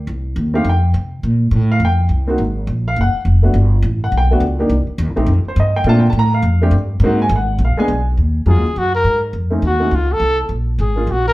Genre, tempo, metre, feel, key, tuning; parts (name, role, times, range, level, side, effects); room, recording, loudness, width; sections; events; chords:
jazz, small-group swing and bop; 208 BPM; 4/4; swing 60% on 8ths; Eb minor from 8.2 s; A4 = 440 Hz
upright bass; bass; 0.0-11.3 s; F1 to C3; -15 LUFS; equal
dark baby grand piano; accompaniment; 0.5-11.1 s; Gb3 to Bb5; -19 LUFS; equal
mellow trumpet; melody; 8.5-11.3 s; F4 to Bb4; -17 LUFS; equal
moderate studio reverb, RT60 0.8 s; heard from further back in the room; -13 LUFS; side -18 dB against mid
0.0-8.2 A section; 8.2-11.3 B section
0.1 Cm; 0.7 F5; 1.2 Bbsus2; 2.4 Absus2; 3.6 Gmaj9; 4.7 Cm7; 5.3 Fsus2; 5.9 Bbmaj9; 7.0 Ab9; 7.6 Bb7b9; 8.2 Ebm11; 9.3 F7b13; 10.5 Bbm7